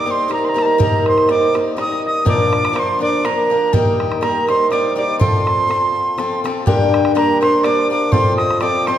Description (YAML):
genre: celtic folk, Celtic waltz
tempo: 123 BPM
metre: 3/4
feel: swing 54% on 8ths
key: unclear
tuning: A4 = 444 Hz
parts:
  - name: reedy mid whistle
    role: melody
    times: 0.0-9.0 s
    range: G5 to Eb6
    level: -18 LUFS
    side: right 1 dB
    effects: none
  - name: concert harp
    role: second line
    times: 0.0-9.0 s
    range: G4 to F5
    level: -20 LUFS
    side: right 3 dB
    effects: none
  - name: picked swing-style acoustic guitar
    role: accompaniment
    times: 0.0-9.0 s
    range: G2 to Bb4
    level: -19 LUFS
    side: left 3 dB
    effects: none
  - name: bodhran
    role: percussion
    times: 0.3-9.0 s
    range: none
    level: -20 LUFS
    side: equal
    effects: none
room: wet recital hall reverb, RT60 1.7 s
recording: recorded in a church or concert hall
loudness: -14 LUFS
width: side -10 dB against mid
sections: 0.0-6.7 A section; 6.7-9.0 A section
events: none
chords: 0.0 Eb; 2.3 Bb; 3.7 Eb; 5.2 F; 6.7 Gm; 8.1 F